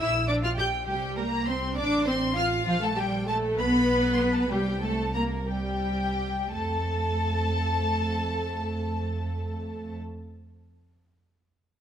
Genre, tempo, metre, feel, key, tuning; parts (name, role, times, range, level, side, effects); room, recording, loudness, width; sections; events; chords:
quick classical-period movement for string orchestra; 56-68 BPM (dotted quarters); 6/8; rubato; F major; A4 = 440 Hz
warm chamber violin section; melody; 0.0-10.0 s; F5 to G6; -31 LUFS; left 2 dB
warm chamber violin section; second line; 0.0-9.9 s; F4 to G5; -33 LUFS; left 1 dB
warm chamber viola section; accompaniment; 0.0-10.0 s; F3 to A4; -30 LUFS; equal
dark studio double bass section; bass; 0.0-9.9 s; A1 to F2; -31 LUFS; right 2 dB
warm chamber cello section; bass; 0.0-10.0 s; F3 to G4; -32 LUFS; right 2 dB
moderate scoring stage reverb, RT60 1.6 s; close, detailed microphones; -24 LUFS; side -9 dB against mid
0.0-6.5 A section; 6.5-10.5 B section
slowing down 1.8-6.5
0.0 Gm/Bb; 0.9 C5; 1.8 F/A; 2.7 Gm7/Bb; 3.6 N.C.; 4.5 C5; 6.5 F